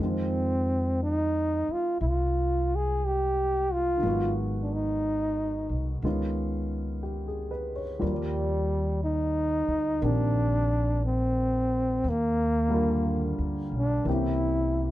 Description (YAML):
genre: jazz ballad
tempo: 60 BPM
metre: 4/4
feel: swing 67% on 8ths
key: Eb major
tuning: A4 = 437 Hz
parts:
  - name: warm trombone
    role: melody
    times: 0.0-14.9 s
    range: G3 to Ab4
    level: -27 LUFS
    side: equal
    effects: plate reverb
  - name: warm upright piano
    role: accompaniment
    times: 0.0-14.9 s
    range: D3 to D5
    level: -33 LUFS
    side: equal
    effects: none
  - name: upright bass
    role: bass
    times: 0.0-14.9 s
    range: Ab1 to F2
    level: -29 LUFS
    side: equal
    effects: none
room: light reverb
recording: dark, warm production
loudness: -25 LUFS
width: side -14 dB against mid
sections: 0.0-14.9 A section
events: none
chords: 0.0 Fm7; 4.0 Abm7; 6.0 Db9; 8.0 Ebmaj9; 14.1 C7b9